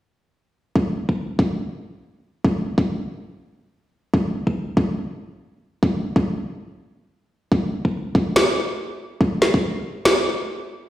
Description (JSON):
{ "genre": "deep dubstep", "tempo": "142 BPM", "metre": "4/4", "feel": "swing 58% on 16ths, half-time", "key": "none", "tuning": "none", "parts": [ { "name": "electronic kick drum", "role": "drums", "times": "0.8-9.6 s", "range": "none", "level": "-20 LUFS", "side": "equal", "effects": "high-pass filter on kick" }, { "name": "electronic snare drum", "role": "drums", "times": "8.4-10.2 s", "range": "none", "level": "-19 LUFS", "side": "equal", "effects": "none" } ], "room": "wet echo chamber reverb, RT60 1.4 s, digital ambience", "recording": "played on a big sound system in a bare room, stone room reverb", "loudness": "-20 LUFS", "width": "side -14 dB against mid", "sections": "0.8-10.9 A section", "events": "none", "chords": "none", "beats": "| 0.76 1.18 1.60 2.02 | 2.45 2.87 3.29 3.71 | 4.14 4.56 4.98 5.41 | 5.83 6.25 6.67 7.09 | 7.52 7.94 8.36 8.79 | 9.21 9.63 10.05" }